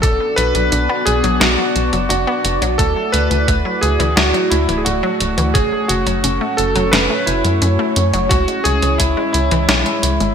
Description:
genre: synthwave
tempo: 87 BPM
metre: 4/4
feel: straight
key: F# minor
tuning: A4 = 440 Hz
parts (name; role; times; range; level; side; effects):
- warm electric grand piano; melody; 0.0-10.3 s; E4 to B4; -19 LUFS; equal; lush chorus, digital delay
- chorused pulse-width pad; sustained chords; 0.0-10.3 s; G#3 to D5; -21 LUFS; equal; sidechain pumping
- wide unison pluck; arpeggios; 0.0-10.3 s; E3 to D4; -24 LUFS; left 2 dB; digital delay
- tight sequencer bass; bass; 0.0-10.3 s; D1 to F#2; -19 LUFS; equal; none
- detuned 8-bit digital drum machine; drums; 0.0-10.3 s; hi-hat, snare drum; -19 LUFS; equal; gated reverb
- electronic kick drum; drums; 0.0-9.1 s; none; -18 LUFS; equal; none
room: moderate lush hall reverb, RT60 1.9 s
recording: bright 1980s-style digital production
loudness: -13 LUFS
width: side -7 dB against mid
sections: 0.0-10.3 A section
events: none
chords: 0.0 Bm; 2.8 Dadd9; 5.5 F#m; 8.3 C#m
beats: | 0.03 0.72 1.41 2.10 | 2.79 3.48 4.17 4.86 | 5.55 6.24 6.93 7.62 | 8.31 9.00 9.69

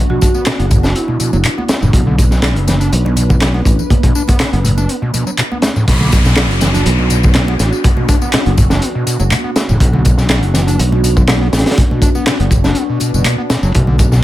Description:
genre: breakbeat, breaks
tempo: 122 BPM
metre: 4/4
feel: swing 53% on 16ths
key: B minor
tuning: A4 = 437 Hz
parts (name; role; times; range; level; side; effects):
- phased analog pad; sustained chords; 0.0-14.2 s; B3 to B4; -22 LUFS; left 1 dB; phaser, chorus, sidechain pumping
- marimba with medium hard mallets; melody; 0.1-1.3 s; E4 to F#4; -23 LUFS; right 2 dB; AM radio sound, ping-pong delay
- overdriven acid bass; riff; 0.1-14.2 s; A2 to D4; -18 LUFS; equal; distortion, cassette tape, ping-pong delay
- congas; percussion; 0.1-14.1 s; none; -25 LUFS; right 4 dB; none
- crunchy breakbeat drum kit; drums; 0.2-14.2 s; crash cymbal, hi-hat, kick drum, snare drum; -14 LUFS; equal; none
- electronic tambourine and handclaps; drums; 0.2-14.2 s; none; -22 LUFS; left 1 dB; none
- modern bright fingered electric bass; bass; 0.6-14.2 s; F#1 to B1; -14 LUFS; equal; none
- downlifter; sound effects; 5.9-9.8 s; none; -23 LUFS; left 2 dB; none
room: little or no reverb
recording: none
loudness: -10 LUFS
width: side -15 dB against mid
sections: 0.0-5.9 A section; 5.9-14.2 B section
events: break 4.9-5.9; drop 5.9-14.2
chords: 0.0 Bm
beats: 0.47 0.96 1.45 | 1.94 2.43 2.92 3.42 | 3.91 4.40 4.89 5.38 | 5.88 6.37 6.86 7.35 | 7.84 8.33 8.83 9.32 | 9.81 10.30 10.79 11.29 | 11.78 12.27 12.76 13.25 | 13.74 14.24

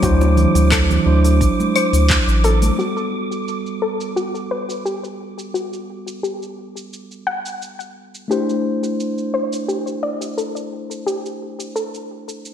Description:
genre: sunset chillout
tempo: 87 BPM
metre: 4/4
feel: straight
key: unclear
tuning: A4 = 440 Hz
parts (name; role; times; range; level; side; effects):
- nylon-string guitar; melody; 0.0-2.1 s; none; barely audible; none; none
- mellow tine electric piano; accompaniment; 0.0-12.5 s; F#3 to C5; -23 LUFS; moving between left 3 dB and right 5 dB; auto-pan, ping-pong delay, slapback echo
- soft round pluck; arpeggios; 0.0-12.1 s; F#4 to F#5; -25 LUFS; left 2 dB; chorus, ping-pong delay, slapback echo
- round analog bass; bass; 0.0-2.7 s; A1 to D2; -15 LUFS; equal; none
- deep house drum kit; drums; 0.0-12.5 s; cabasa, claves, handclaps, hi-hat; -24 LUFS; left 1 dB; low-pass filter on perc, low-pass filter on hats, low-pass filter on snare, slapback echo
- electronic kick drum; drums; 0.0-2.2 s; none; -21 LUFS; equal; none
- wind-like tuned noise texture; texture; 0.0-2.8 s; D6; -28 LUFS; right 1 dB; built-in reverb
- bongos and congas; percussion; 0.2-2.8 s; none; -25 LUFS; right 3 dB; none
room: moderate lush hall reverb, RT60 1.7 s, digital ambience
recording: big arena sound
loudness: -17 LUFS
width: side -9 dB against mid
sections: 0.0-2.8 A section; 2.8-12.5 B section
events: filter sweep on synth arpeggio sound 2.8-12.5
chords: 0.0 D9; 2.8 Gmaj9; 8.3 C69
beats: | 0.03 0.72 1.41 2.10 | 2.79 3.48 4.17 4.86 | 5.55 6.24 6.93 7.62 | 8.31 8.99 9.69 10.38 | 11.06 11.75 12.44

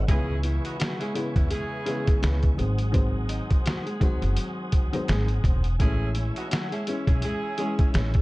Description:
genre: hip hop, boom-bap hip-hop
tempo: 84 BPM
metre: 4/4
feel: swing 58% on 16ths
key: C# minor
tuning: A4 = 440 Hz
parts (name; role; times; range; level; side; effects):
- tonewheel organ; sustained chords; 0.0-8.2 s; B4 to E6; -40 LUFS; right 1 dB; chorus vibrato, stopped rotary speaker, high-pass filter, low-pass filter
- upright bass; bass; 0.0-8.2 s; E1 to E2; -26 LUFS; equal; none
- dark upright piano; accompaniment; 0.1-8.2 s; C#3 to C#4; -32 LUFS; left 2 dB; cassette tape, high-pass filter, low-pass filter
- edgy saxophone section; stabs; 0.1-7.9 s; A3 to G#4; -35 LUFS; right 2 dB; high-pass filter, low-pass filter, slapback echo
- trip hop sampler-style drum kit; drums; 0.1-8.2 s; hi-hat, kick drum, snare drum; -24 LUFS; equal; none
- nylon-string guitar; melody; 0.4-8.2 s; E3 to D#5; -34 LUFS; equal; high-pass filter, low-pass filter, slapback echo
room: little or no reverb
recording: dark, warm production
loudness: -23 LUFS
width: side -20 dB against mid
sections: 0.0-8.2 A section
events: none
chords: 0.1 C#m7; 2.6 G#7; 5.8 Amaj7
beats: | 0.09 0.80 1.51 2.23 | 2.94 3.66 4.37 5.08 | 5.80 6.51 7.23 7.94

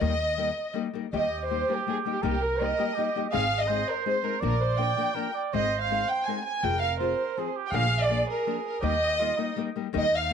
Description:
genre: mexican folk, mariachi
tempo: 164 BPM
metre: 3/4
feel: rubato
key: Eb major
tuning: A4 = 441 Hz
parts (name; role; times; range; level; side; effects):
- dark chamber violin section; melody; 0.0-10.3 s; G4 to Ab5; -27 LUFS; right 1 dB; none
- nylon-string guitar; accompaniment; 0.0-10.3 s; Ab2 to Bb4; -32 LUFS; left 11 dB; none
- upright bass; bass; 0.0-10.3 s; F1 to Eb2; -30 LUFS; right 1 dB; none
- mellow trumpet; second line; 1.2-10.3 s; Eb4 to D5; -32 LUFS; right 11 dB; none
room: moderate spring reverb, RT60 1.1 s, small room ambience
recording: 1960s-style stereo with parts hard left and right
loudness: -25 LUFS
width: side -7 dB against mid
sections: 0.0-1.1 A section; 1.1-9.9 A section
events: none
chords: 0.0 Eb; 2.2 Cm7; 3.3 Ab; 4.4 Bb; 5.5 Abadd9; 6.6 Fm; 7.7 Bb; 8.8 Eb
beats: | 0.01 0.38 0.76 | 1.13 1.50 1.87 | 2.24 2.60 2.96 | 3.33 3.69 4.05 | 4.41 4.78 5.15 | 5.53 5.90 6.26 | 6.63 7.00 7.36 | 7.73 8.09 8.46 | 8.82 9.19 9.57 | 9.94 10.31

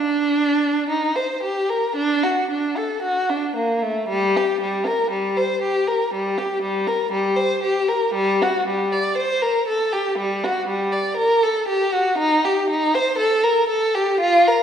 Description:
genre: classical, baroque-style suite movement for unaccompanied violin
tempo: 55-62 BPM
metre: 4/4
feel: rubato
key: unclear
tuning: A4 = 440 Hz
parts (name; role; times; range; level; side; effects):
- rich violin; solo; 0.0-14.6 s; G3 to D5; -18 LUFS; equal; none
room: wet recital hall reverb, RT60 1.5 s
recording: recorded in a church or concert hall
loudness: -18 LUFS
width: side -8 dB against mid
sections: 0.0-14.6 A section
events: none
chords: none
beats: 0.88 1.95 3.01 | 4.08 5.10 6.12 7.10 | 8.14 9.16 10.17 11.17 | 12.18 13.19 14.21

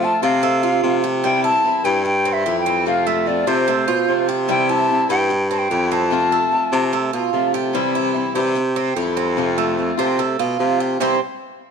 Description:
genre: latin, Cuban son and guajira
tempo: 148 BPM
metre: 4/4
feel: straight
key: C major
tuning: A4 = 440 Hz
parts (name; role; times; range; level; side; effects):
- hollow concert flute; melody; 0.0-7.3 s; C5 to A5; -19 LUFS; left 1 dB; none
- picked swing-style acoustic guitar; accompaniment; 0.0-11.2 s; C3 to F4; -25 LUFS; left 13 dB; none
- Cuban tres; arpeggios; 0.0-11.2 s; G3 to C5; -23 LUFS; right 12 dB; none
- breathy baritone saxophone; bass; 0.0-11.2 s; F2 to F3; -21 LUFS; equal; none
room: light reverb, small room ambience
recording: 1960s-style stereo with parts hard left and right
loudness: -16 LUFS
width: side -6 dB against mid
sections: 0.0-7.7 A section; 7.7-11.0 B section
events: none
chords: 0.0 F; 1.2 C; 2.9 F; 4.5 C; 6.1 F; 7.7 C; 9.4 F; 11.0 C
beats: 0.03 0.43 0.84 | 1.24 1.65 2.05 2.46 | 2.87 3.27 3.68 4.08 | 4.49 4.90 5.30 5.71 | 6.12 6.52 6.93 7.34 | 7.74 8.15 8.56 8.97 | 9.37 9.78 10.19 10.60 | 11.00

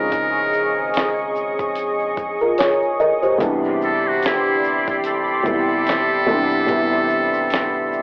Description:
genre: lo-fi hip hop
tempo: 73 BPM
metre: 4/4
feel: swing 56% on 16ths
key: unclear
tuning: A4 = 439 Hz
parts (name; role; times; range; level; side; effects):
- trumpet with metal mute; melody; 0.0-8.0 s; E4 to Bb4; -24 LUFS; equal; low-pass filter, cassette tape
- felt-muted upright piano; accompaniment; 0.0-8.0 s; C3 to Eb5; -23 LUFS; equal; cassette tape, low-pass filter
- lush unison pad; sustained chords; 0.0-8.0 s; G4 to Db6; -26 LUFS; equal; chorus, low-pass filter, cassette tape, plate reverb
- soft dub sub bass; bass; 0.0-8.0 s; E1 to Bb1; -48 LUFS; equal; none
- dusty soul sampler-style drum kit; drums; 0.1-8.0 s; hi-hat, kick drum, shaker, snare drum; -26 LUFS; equal; cassette tape
- tube shaker; percussion; 0.1-8.0 s; none; -53 LUFS; equal; none
room: moderate studio reverb, RT60 0.5 s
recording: home recording on cassette, telephone sound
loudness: -19 LUFS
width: mono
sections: 0.0-8.0 A section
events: none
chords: 0.0 Bbm11; 3.4 Am11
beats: | 0.12 0.94 1.77 2.59 | 3.41 4.23 5.05 5.88 | 6.70 7.52

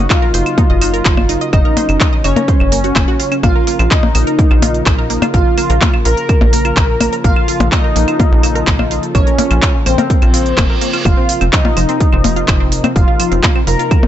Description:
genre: melodic techno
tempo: 126 BPM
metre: 4/4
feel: straight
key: Bb harmonic minor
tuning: A4 = 440 Hz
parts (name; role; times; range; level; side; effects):
- mellow synth brass; melody; 0.0-14.1 s; C4 to Bb4; -18 LUFS; equal; chorus, sidechain pumping, dub echo
- glassy wavetable pluck; second line; 0.0-14.1 s; C5 to Bb5; -25 LUFS; left 1 dB; chorus, sidechain pumping, dub echo
- warm analog pad; sustained chords; 0.0-14.1 s; C3 to Bb4; -23 LUFS; left 1 dB; lush chorus, sidechain pumping
- wide unison pluck; arpeggios; 0.0-14.1 s; F3 to Eb6; -22 LUFS; right 2 dB; sidechain pumping, dub echo
- tight sequencer bass; bass; 0.0-14.1 s; F1 to Bb1; -16 LUFS; equal; sidechain pumping
- electronic kick drum; drums; 0.1-14.0 s; none; -13 LUFS; equal; none
- techno drum kit; drums; 0.1-14.1 s; claves, handclaps, hi-hat, percussion blips; -17 LUFS; left 2 dB; none
- reverse cymbal; sound effects; 10.3-11.1 s; none; -25 LUFS; right 5 dB; none
room: little or no reverb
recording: nothing above 8.0 kHz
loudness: -10 LUFS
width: side -11 dB against mid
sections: 0.0-14.1 A section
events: reverse cymbal 10.3-11.1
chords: 0.0 Ebm7/Gb; 3.4 Bbm; 11.1 Fsus4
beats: 0.10 0.58 1.05 | 1.53 2.01 2.48 2.96 | 3.44 3.91 4.39 4.86 | 5.34 5.82 6.29 6.77 | 7.24 7.72 8.20 8.67 | 9.15 9.62 10.10 10.58 | 11.05 11.53 12.01 12.48 | 12.96 13.44 13.91

